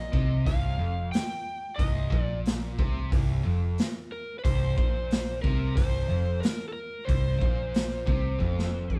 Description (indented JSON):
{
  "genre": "blues rock power trio and southern rock",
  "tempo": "91 BPM",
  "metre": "4/4",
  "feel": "straight",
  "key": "C minor",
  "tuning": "A4 = 441 Hz",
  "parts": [
    { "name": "overdriven slide guitar", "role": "melody", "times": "0.0-9.0 s", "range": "A4 to G5", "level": "-37 LUFS", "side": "equal", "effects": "none" },
    { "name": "crunchy overdriven guitar", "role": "riff", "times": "0.0-9.0 s", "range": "C2 to C3", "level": "-33 LUFS", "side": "equal", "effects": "none" },
    { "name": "vintage muted picked electric bass", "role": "bass", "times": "0.0-9.0 s", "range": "C1 to C2", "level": "-32 LUFS", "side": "equal", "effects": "none" },
    { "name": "raw garage drum kit", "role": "drums", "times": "0.1-9.0 s", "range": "hi-hat, kick drum, snare drum", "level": "-31 LUFS", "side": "equal", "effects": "none" }
  ],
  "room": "light reverb",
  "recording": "band playing live in one room",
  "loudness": "-28 LUFS",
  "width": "mono",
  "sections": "0.0-9.0 A section",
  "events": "drum fill 8.4-9.0",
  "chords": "none"
}